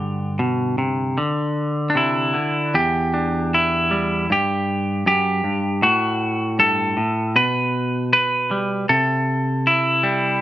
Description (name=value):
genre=folk, solo fingerstyle acoustic guitar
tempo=78 BPM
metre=4/4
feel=straight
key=G major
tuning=A4 = 444 Hz
part: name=semi-hollow electric guitar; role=solo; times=0.0-10.4 s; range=E2 to B4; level=-17 LUFS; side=equal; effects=none
room=light reverb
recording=minimal, uncompressed stereo recording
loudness=-17 LUFS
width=side -13 dB against mid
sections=0.0-1.2 A section; 1.2-10.4 B section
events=none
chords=0.0 G; 1.2 Dsus2; 2.7 Em7; 4.3 N.C.; 5.8 F#m; 7.4 G/B; 8.9 C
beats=0.39 | 1.18 1.97 2.75 3.53 | 4.31 5.08 5.84 6.60 | 7.37 8.14 8.90 9.67